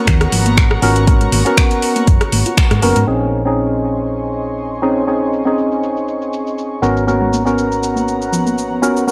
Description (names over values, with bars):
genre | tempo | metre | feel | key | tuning
deep house | 120 BPM | 4/4 | swing 54% on 16ths | Bb phrygian | A4 = 441 Hz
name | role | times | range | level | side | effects
airy breathy pad | sustained chords | 0.0-9.1 s | Cb4 to Db6 | -26 LUFS | equal | chorus, sidechain pumping
soft round pluck | arpeggios | 0.0-2.9, 7.1-9.1 s | F3 to F4 | -26 LUFS | equal | chorus, sidechain pumping, tape echo
percussive organ stab | stabs | 0.0-9.1 s | Cb4 to Bb4 | -19 LUFS | equal | analog chorus, sidechain pumping, tape echo
hollow-body short-scale fingered electric bass | bass | 0.1-9.1 s | Gb1 to Ab2 | -22 LUFS | equal | sidechain pumping, low-pass filter
deep house drum kit | drums | 0.1-9.1 s | cabasa, finger snaps, hi-hat, rim click | -22 LUFS | equal | overdrive, low-pass filter on hats, small room reverb, low-pass filter on snare, low-pass filter on perc
electronic kick drum | drums | 0.1-2.7 s | none | -15 LUFS | equal | overdrive, small room reverb
room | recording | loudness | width
light reverb | dry, gritty hardware recording | -15 LUFS | mono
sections
0.0-3.1 A section; 3.1-9.1 B section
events
filter sweep on synth stab 0.0-3.1; band accent 2.6; filter sweep on drum 3.1-9.1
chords
0.0 Abm11; 3.1 Bbm11; 6.8 Abm11